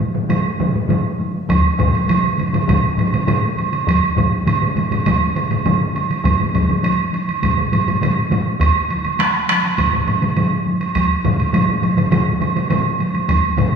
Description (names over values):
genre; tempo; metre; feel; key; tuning
japanese traditional, taiko drum ensemble; 102 BPM; 4/4; straight; none; none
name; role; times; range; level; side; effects
solo taiko drums; percussion; 0.0-13.7 s; none; -22 LUFS; right 4 dB; none
taiko ensemble; percussion; 0.1-13.8 s; none; -20 LUFS; left 1 dB; none
taiko ensemble; percussion; 0.1-13.7 s; none; -22 LUFS; left 4 dB; none
woodblock; percussion; 0.3-13.7 s; none; -21 LUFS; right 7 dB; none
taiko ensemble; percussion; 1.5-13.7 s; none; -22 LUFS; left 1 dB; none
room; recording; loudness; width
wet concert hall reverb, RT60 2.3 s; studio reverb; -15 LUFS; side -6 dB against mid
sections
0.0-1.5 A section; 1.5-13.8 B section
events
speeding up 0.0-13.8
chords
none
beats
0.29 0.90 | 1.49 2.09 2.69 3.29 | 3.88 4.47 5.07 5.66 | 6.25 6.84 7.43 8.02 | 8.61 9.20 9.78 10.37 | 10.95 11.54 12.12 12.70 | 13.28